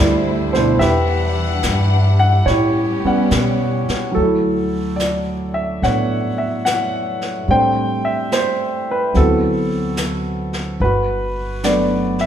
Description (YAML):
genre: jazz ballad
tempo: 72 BPM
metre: 4/4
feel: swing 68% on 8ths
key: D major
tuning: A4 = 440 Hz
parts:
  - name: warm baby grand piano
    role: accompaniment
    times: 0.0-12.3 s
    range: B2 to G5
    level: -17 LUFS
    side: right 1 dB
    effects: none
  - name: warm symphonic string section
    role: sustained chords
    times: 0.0-4.1 s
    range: D3 to F#5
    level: -25 LUFS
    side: left 4 dB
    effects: none
  - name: upright bass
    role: bass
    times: 0.0-12.3 s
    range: G1 to B2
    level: -20 LUFS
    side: equal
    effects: none
  - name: jazz brush drum kit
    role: drums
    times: 0.5-12.3 s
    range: brushed snare drum, hi-hat, snare drum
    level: -26 LUFS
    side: left 1 dB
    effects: none
room: moderate recital hall reverb, RT60 1.8 s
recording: recorded in a church or concert hall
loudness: -15 LUFS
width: side -9 dB against mid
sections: 0.0-4.2 A section; 4.2-12.3 B section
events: none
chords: 0.0 C69; 0.8 Em9; 2.5 A13; 4.2 Dmaj9; 7.5 Am7; 9.1 D13; 10.8 Gmaj9